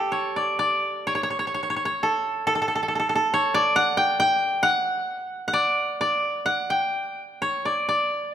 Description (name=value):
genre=japanese traditional, Japanese chamber music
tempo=63-70 BPM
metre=2/4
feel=rubato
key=D ryukyu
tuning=A4 = 440 Hz
part: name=koto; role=solo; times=0.0-8.3 s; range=G4 to G5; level=-21 LUFS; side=equal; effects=none
room=moderate concert hall reverb, RT60 2.1 s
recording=minimal, uncompressed stereo recording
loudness=-21 LUFS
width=side -10 dB against mid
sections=0.6-8.3 A section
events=none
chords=none